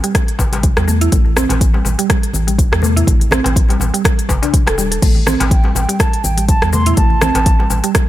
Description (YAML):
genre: afro house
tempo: 123 BPM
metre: 4/4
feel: swing 56% on 16ths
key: unclear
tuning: A4 = 440 Hz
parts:
  - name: mallet-like synth pluck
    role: arpeggios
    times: 0.0-7.9 s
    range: G3 to A4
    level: -20 LUFS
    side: right 1 dB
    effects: chorus, sidechain pumping, ping-pong delay
  - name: afro-pop drum kit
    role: drums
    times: 0.0-8.1 s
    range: crash cymbal, hi-hat, rim click, shaker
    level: -19 LUFS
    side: left 1 dB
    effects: none
  - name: electronic kick drum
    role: drums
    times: 0.1-8.1 s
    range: none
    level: -13 LUFS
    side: equal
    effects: none
  - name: congas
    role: percussion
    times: 0.1-8.1 s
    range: none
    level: -26 LUFS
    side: right 2 dB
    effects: none
  - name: round analog bass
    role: bass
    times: 0.4-7.8 s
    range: E1 to E2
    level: -17 LUFS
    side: equal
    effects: sidechain pumping
  - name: darbuka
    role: percussion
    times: 0.4-7.8 s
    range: none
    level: -25 LUFS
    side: left 3 dB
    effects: none
  - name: mellow hollow silver concert flute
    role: melody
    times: 5.5-7.9 s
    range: G5 to C6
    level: -20 LUFS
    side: right 2 dB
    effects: ping-pong delay
room: digital ambience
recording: none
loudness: -11 LUFS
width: side -14 dB against mid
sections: 0.0-8.1 A section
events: none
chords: 0.0 C6/A (rootless)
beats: 0.14 0.63 | 1.12 1.61 2.10 2.58 | 3.07 3.56 4.05 4.54 | 5.02 5.51 6.00 6.49 | 6.97 7.46 7.95